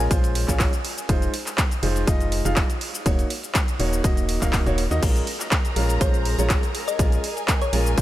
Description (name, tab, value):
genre	piano house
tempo	122 BPM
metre	4/4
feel	swing 53% on 16ths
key	Bb minor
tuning	A4 = 441 Hz
part	thumb-piano-like synth pluck	melody	0.0-0.4, 6.0-8.0 s	Db5 to Ab5	-31 LUFS	left 3 dB	chorus, phaser, diffuse ambient delay
part	clear upright piano	riff	0.0-8.0 s	Ab3 to F5	-27 LUFS	right 1 dB	sidechain pumping, diffuse ambient delay
part	organ-like FM bass	bass	0.0-8.0 s	Eb1 to Eb2	-24 LUFS	equal	sidechain pumping
part	house drum kit	drums	0.0-8.0 s	crash cymbal, handclaps, hi-hat, ride cymbal, shaker	-27 LUFS	equal	overdrive
part	electronic kick drum	drums	0.1-8.0 s	none	-22 LUFS	equal	overdrive
part	rich studio string section	sustained chords	5.0-8.0 s	Ab4 to Bb5	-32 LUFS	equal	sidechain pumping
room	light reverb, digital ambience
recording	none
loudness	-20 LUFS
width	side -14 dB against mid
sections	0.0-8.0 A section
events	none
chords	0.0 Bbm7; 0.8 Fm7; 2.8 Ebm7; 5.0 Bbm7